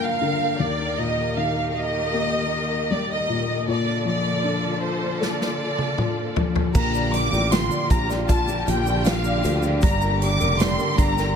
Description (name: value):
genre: pop ballad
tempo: 78 BPM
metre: 4/4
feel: straight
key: Bb major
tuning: A4 = 438 Hz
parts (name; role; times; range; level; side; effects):
- rich studio violin section; melody; 0.0-11.4 s; C5 to D6; -25 LUFS; right 1 dB; dub echo
- dark baby grand piano; accompaniment; 0.0-11.4 s; Eb2 to D5; -26 LUFS; left 5 dB; dub echo
- warm studio string section; sustained chords; 0.0-11.4 s; D3 to Bb4; -30 LUFS; equal; none
- natural country drum kit; drums; 5.2-11.3 s; crash cymbal, hi-hat, kick drum, snare drum, toms; -24 LUFS; right 1 dB; none
- fingerpicked steel-string acoustic guitar; arpeggios; 6.7-11.4 s; G2 to A4; -29 LUFS; right 7 dB; none
- sustaining fretless electric bass; bass; 6.8-11.4 s; F1 to D2; -24 LUFS; right 1 dB; none
- egg shaker; percussion; 6.8-11.4 s; none; -41 LUFS; left 13 dB; none
room: light reverb, small room ambience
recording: echo-heavy mix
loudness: -20 LUFS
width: side -7 dB against mid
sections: 0.0-6.8 A section; 6.8-11.4 B section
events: drum fill 5.2-6.8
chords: 0.0 Gm7; 0.6 Eb; 3.7 Bbmaj7; 6.8 Bb6; 9.8 Gmadd9